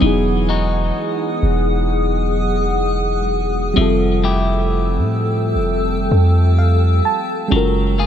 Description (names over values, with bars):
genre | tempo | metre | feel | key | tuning
R&B | 64 BPM | 4/4 | swing 58% on 16ths | unclear | A4 = 438 Hz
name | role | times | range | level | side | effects
mellow FM electric piano | accompaniment | 0.0-8.1 s | F#3 to A5 | -21 LUFS | right 1 dB | chorus, phaser
granular cloud pad | sustained chords | 0.0-8.1 s | G#4 to E6 | -22 LUFS | left 2 dB | built-in reverb
clean electric guitar | arpeggios | 0.0-8.1 s | B2 to G#4 | -24 LUFS | left 6 dB | tape echo
long sustained 808-style bass | bass | 0.0-8.1 s | E1 to A2 | -17 LUFS | equal | none
room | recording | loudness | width
light reverb | echo-heavy mix | -15 LUFS | side -9 dB against mid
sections
0.0-8.1 A section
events
FM electric piano fill 6.1-7.5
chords
0.0 Emaj9; 3.8 Fmaj9; 7.5 F#maj9